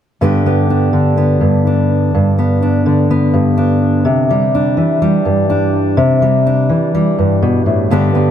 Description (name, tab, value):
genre	folk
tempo	125 BPM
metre	4/4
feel	straight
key	G major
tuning	A4 = 440 Hz
part	fingerpicked steel-string acoustic guitar	solo	0.2-8.3 s	G2 to G4	-11 LUFS	equal	analog delay
room	moderate echo chamber reverb, RT60 1.6 s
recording	echo-heavy mix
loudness	-11 LUFS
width	side -9 dB against mid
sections	0.2-7.9 A section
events	none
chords	0.2 G; 4.1 Cadd9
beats	| 0.21 0.69 1.17 1.65 | 2.13 2.61 3.09 3.57 | 4.05 4.53 5.01 5.49 | 5.97 6.46 6.94 7.42 | 7.90